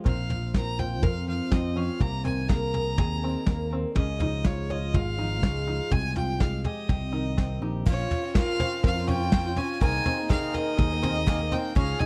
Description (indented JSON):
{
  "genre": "indie folk with a building arrangement",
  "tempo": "123 BPM",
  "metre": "4/4",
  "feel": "straight",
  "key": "unclear",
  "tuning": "A4 = 440 Hz",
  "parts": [
    { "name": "fingerpicked steel-string acoustic guitar", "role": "accompaniment", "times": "0.0-7.9 s", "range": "F2 to Ab4", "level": "-36 LUFS", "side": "equal", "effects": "none" },
    { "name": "open-back banjo", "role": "arpeggios", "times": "0.0-12.1 s", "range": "Ab3 to Db5", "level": "-37 LUFS", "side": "equal", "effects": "none" },
    { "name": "clear fiddle", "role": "melody", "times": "0.1-12.1 s", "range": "Db5 to Bb5", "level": "-35 LUFS", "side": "equal", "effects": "none" },
    { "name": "picked electric bass", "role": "bass", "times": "0.1-11.9 s", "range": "Ab1 to F2", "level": "-32 LUFS", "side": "equal", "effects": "none" },
    { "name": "soft brush drum kit", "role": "drums", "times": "0.1-12.1 s", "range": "crash cymbal, kick drum, snare drum, toms", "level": "-27 LUFS", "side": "equal", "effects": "none" },
    { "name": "dark trombone", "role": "second line", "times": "7.9-12.1 s", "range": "Eb4 to Ab4", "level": "-36 LUFS", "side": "equal", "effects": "none" },
    { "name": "picked twelve-string acoustic guitar", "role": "accompaniment", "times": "7.9-12.1 s", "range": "Bb2 to Ab4", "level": "-37 LUFS", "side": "equal", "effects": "none" }
  ],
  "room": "little or no reverb",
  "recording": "dry, close 1970s-style studio recording",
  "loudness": "-27 LUFS",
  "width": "mono",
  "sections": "0.0-7.9 A section; 7.9-12.1 B section",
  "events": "none",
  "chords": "0.1 Bbmadd9; 2.0 Abadd9/C; 4.0 Dbadd9; 5.9 Fmadd9/C; 6.9 Cm; 7.9 Bbmadd9; 9.8 Abadd9/C",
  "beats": "| 0.05 0.54 1.03 1.52 | 2.01 2.50 2.98 3.47 | 3.96 4.45 4.94 5.43 | 5.92 6.40 6.89 7.38 | 7.87 8.35 8.84 9.33 | 9.81 10.30 10.79 11.27 | 11.76"
}